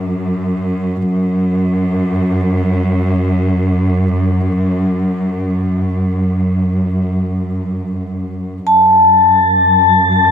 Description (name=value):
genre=ambient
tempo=free time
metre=none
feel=none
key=F# minor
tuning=A4 = 440 Hz
part: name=dark studio cello section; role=bass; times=0.0-10.3 s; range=F#2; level=-14 LUFS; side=equal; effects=none
part: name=vibraphone with soft mallets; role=arpeggios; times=8.7-10.3 s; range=A5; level=-8 LUFS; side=left 2 dB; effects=diffuse ambient delay
room=moderate shimmer reverb, RT60 6.9 s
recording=none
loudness=-12 LUFS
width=side -7 dB against mid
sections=0.0-10.3 A section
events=none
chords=none